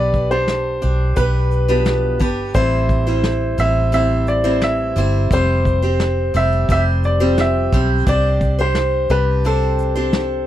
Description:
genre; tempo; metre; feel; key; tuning
acoustic pop; 87 BPM; 4/4; straight; A minor; A4 = 440 Hz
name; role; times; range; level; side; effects
bright upright piano; melody; 0.0-10.4 s; A4 to E5; -21 LUFS; equal; none
picked acoustic archtop guitar; accompaniment; 0.0-10.5 s; A2 to C5; -20 LUFS; equal; none
vintage muted fingered electric bass; bass; 0.0-10.4 s; F1 to C2; -18 LUFS; equal; none
vintage brush drum kit; drums; 0.1-10.3 s; kick drum, shaker, snare drum; -21 LUFS; equal; none
room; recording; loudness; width
little or no reverb; dry, close 1970s-style studio recording; -15 LUFS; side -12 dB against mid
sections
0.0-10.5 A section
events
none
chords
0.0 G7/B; 2.6 Am7; 5.3 Fsus2; 8.1 Csus2

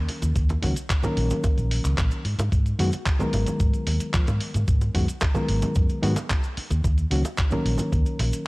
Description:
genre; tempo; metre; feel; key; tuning
nu-disco, nu disco; 111 BPM; 4/4; straight; unclear; A4 = 439 Hz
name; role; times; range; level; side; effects
reed electric piano; accompaniment; 0.0-8.5 s; Eb3 to Bb4; -28 LUFS; left 1 dB; none
fingered electric bass with an envelope filter; bass; 0.0-8.4 s; Ab1 to F3; -24 LUFS; equal; none
dusty soul sampler-style drum kit; drums; 0.1-8.4 s; handclaps, hi-hat; -32 LUFS; equal; none
congas and cabasa; percussion; 0.1-8.4 s; none; -33 LUFS; right 2 dB; none
electronic kick drum; drums; 0.4-8.0 s; none; -23 LUFS; equal; none
room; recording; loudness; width
little or no reverb; dry, gritty hardware recording, cassette tape; -21 LUFS; side -23 dB against mid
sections
0.0-8.5 A section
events
none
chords
0.0 Ebm7; 2.3 Abm7; 6.8 Ebm7

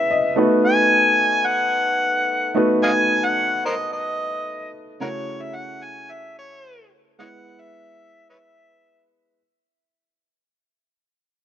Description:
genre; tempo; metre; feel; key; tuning
pop; 110 BPM; 4/4; straight; E major; A4 = 440 Hz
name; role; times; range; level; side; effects
overdriven harmonica; melody; 0.0-9.1 s; F#4 to G#5; -20 LUFS; equal; none
warm baby grand piano; accompaniment; 0.0-9.4 s; C#3 to D#5; -21 LUFS; equal; none
room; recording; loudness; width
moderate plate reverb, RT60 3.0 s; none; -17 LUFS; side -10 dB against mid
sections
0.0-9.4 A section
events
fade-out 0.0-9.4; grand piano fill 0.0-0.6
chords
0.4 B7; 5.0 A6/C#; 7.2 E

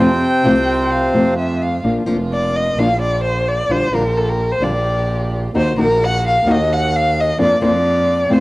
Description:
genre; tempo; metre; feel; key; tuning
tango; 130 BPM; 4/4; rubato; Bb major; A4 = 438 Hz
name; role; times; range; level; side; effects
bandoneon; melody; 0.0-1.3 s; C3 to C4; -16 LUFS; equal; none
warm violin; second line; 0.0-8.4 s; A4 to G5; -18 LUFS; left 1 dB; cassette tape
nylon-string guitar; accompaniment; 0.0-8.4 s; C3 to Gb4; -17 LUFS; left 1 dB; cassette tape
rich chamber string section; stabs; 0.0-8.4 s; A3 to G4; -31 LUFS; right 3 dB; cassette tape
clear double bass; bass; 0.0-8.4 s; F1 to F2; -20 LUFS; right 1 dB; none
room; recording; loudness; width
moderate spring reverb, RT60 1.7 s, small room ambience; home recording on cassette; -14 LUFS; side -20 dB against mid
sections
0.0-1.9 A section; 1.9-8.4 B section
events
violin solo 1.9-8.4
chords
0.0 F; 1.9 Bb; 3.7 Gm7/Bb; 5.6 Ebm; 7.4 Bb/F

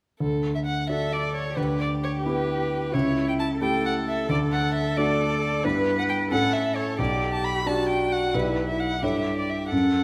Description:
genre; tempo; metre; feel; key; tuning
quick classical-period movement for piano trio; 88 BPM (dotted quarters); 6/8; straight; D major; A4 = 438 Hz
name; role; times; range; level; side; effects
rich violin; melody; 0.2-10.0 s; A4 to B5; -30 LUFS; equal; none
warm concert grand piano; accompaniment; 0.2-10.0 s; B1 to D5; -27 LUFS; equal; none
rich cello; second line; 0.9-10.0 s; E4 to B4; -32 LUFS; equal; none
room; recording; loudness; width
wet recital hall reverb, RT60 1.3 s; none; -25 LUFS; mono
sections
0.2-10.0 A section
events
none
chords
0.2 D; 1.6 Em7/D; 2.9 A7/C#; 4.3 D; 5.6 Em/G; 6.3 A; 7.0 G/B; 8.3 Em7/B; 9.0 A7/G

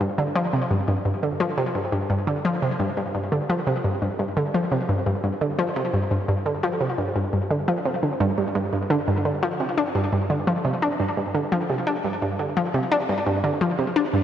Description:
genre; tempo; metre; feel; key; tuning
ambient; 86 BPM; 4/4; straight; unclear; A4 = 440 Hz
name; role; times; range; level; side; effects
analog pluck; solo; 0.0-14.2 s; G2 to D4; -21 LUFS; equal; chorus, tape echo
room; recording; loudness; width
wet lush hall reverb, RT60 2.7 s; dreamy mix soaked in reverb; -21 LUFS; side -10 dB against mid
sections
0.0-14.2 A section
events
none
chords
none

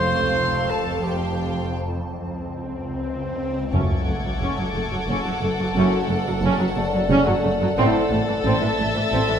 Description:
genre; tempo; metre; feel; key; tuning
cinematic, suspense film score; 89 BPM; 3/4; straight; F# minor from 3.7 s; A4 = 440 Hz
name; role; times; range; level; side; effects
dark studio violin section; melody; 0.0-9.4 s; E5 to F#5; -32 LUFS; left 2 dB; none
clear studio violin section; second line; 0.0-9.4 s; A4 to C6; -30 LUFS; left 2 dB; none
warm clarinet; second line; 0.0-1.7 s; G4 to C5; -25 LUFS; right 1 dB; none
dark studio viola section; accompaniment; 0.0-9.4 s; E3 to A4; -26 LUFS; right 2 dB; none
granular cloud pad; sustained chords; 0.0-9.4 s; A4 to A5; -32 LUFS; left 2 dB; built-in reverb
dark chamber cello section; bass; 0.0-9.4 s; F2 to A2; -27 LUFS; right 2 dB; none
dark chamber double bass section; bass; 0.0-9.2 s; F1 to A1; -27 LUFS; right 3 dB; none
swarming drone; drone; 0.0-9.4 s; F#1 to F2; -30 LUFS; equal; built-in reverb
vibraphone with soft mallets; texture; 0.7-9.4 s; C4 to E5; -30 LUFS; left 3 dB; none
swell and sub drop; sound effects; 2.4-5.8 s; none; -29 LUFS; left 1 dB; none
clear trombone section; sustained chords; 3.7-8.0 s; F#2 to A3; -30 LUFS; right 4 dB; none
mellow French horn section; sustained chords; 3.7-8.0 s; C4 to F#4; -28 LUFS; left 5 dB; none
timpani; percussion; 3.7-4.7 s; F#2; -28 LUFS; left 1 dB; none
rich studio violin section; texture; 3.7-9.4 s; C#6 to A6; -32 LUFS; left 3 dB; none
room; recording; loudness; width
wet scoring stage reverb, RT60 1.6 s; none; -20 LUFS; side -8 dB against mid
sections
0.0-3.7 A section; 3.7-9.4 B section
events
break 1.7-3.7; swell 2.4-3.7; impact 3.7-5.8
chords
0.0 F; 1.7 N.C.; 3.7 F#m; 7.8 Am

